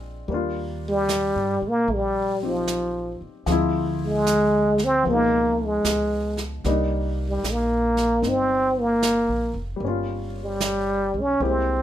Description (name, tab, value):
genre	jazz ballad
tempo	76 BPM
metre	4/4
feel	swing 67% on 8ths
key	Eb major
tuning	A4 = 440 Hz
part	warm upright piano	accompaniment	0.0-11.8 s	Cb3 to G4	-28 LUFS	left 4 dB	none
part	upright bass	bass	0.0-11.8 s	F1 to Bb2	-29 LUFS	right 1 dB	none
part	jazz brush drum kit	drums	0.3-11.8 s	brushed snare drum, hi-hat, snare drum	-30 LUFS	right 4 dB	none
part	trombone with plunger mute	melody	0.9-11.8 s	F3 to Db4	-21 LUFS	equal	none
room	light reverb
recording	minimal, uncompressed stereo recording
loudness	-20 LUFS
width	side -11 dB against mid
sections	0.3-11.8 A section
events	none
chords	0.3 Ebmaj7; 3.5 Dm7b5; 5.1 Db9; 6.6 Cm7; 9.8 Gm7b5